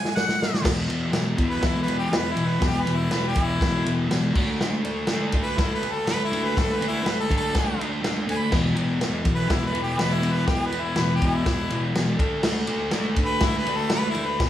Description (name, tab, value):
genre	garage rock duo or trio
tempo	122 BPM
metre	4/4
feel	straight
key	unclear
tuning	A4 = 442 Hz
part	bright harmonica	melody	0.0-14.4 s	E4 to B5	-27 LUFS	equal	overdrive
part	vintage drum kit	drums	0.1-14.5 s	crash cymbal, kick drum, ride cymbal, snare drum	-25 LUFS	equal	none
part	fuzz guitar	riff	0.6-14.5 s	E2 to D4	-24 LUFS	left 1 dB	distortion
room	light reverb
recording	studio reverb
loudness	-21 LUFS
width	side -12 dB against mid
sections	0.7-14.5 A section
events	drum fill 0.0-0.7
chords	0.0 N.C.; 0.7 E5; 4.3 D5; 8.5 E5; 12.2 D5